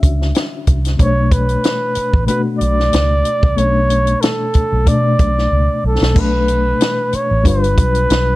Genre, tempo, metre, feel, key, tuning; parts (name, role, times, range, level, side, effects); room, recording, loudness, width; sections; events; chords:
lush 1970s-style soul; 93 BPM; 4/4; swing 54% on 16ths; A4 = 439 Hz
reed electric piano; accompaniment; 0.0-8.4 s; B2 to E5; -20 LUFS; left 3 dB; fast tremolo
vintage muted fingered electric bass; bass; 0.0-8.4 s; G1 to B2; -16 LUFS; equal
compact cocktail drum kit; drums; 0.0-8.3 s; crash cymbal, hi-hat, kick drum, snare drum; -16 LUFS; equal
breathy flugelhorn; melody; 1.0-8.4 s; A4 to D5; -18 LUFS; right 1 dB
little or no reverb; dark, warm production; -12 LUFS; side -17 dB against mid
0.0-6.2 A section; 6.2-8.4 B section
drum fill 5.5-6.2
0.0 Dmaj9; 1.0 Bm9; 6.2 Bm7; 7.5 G7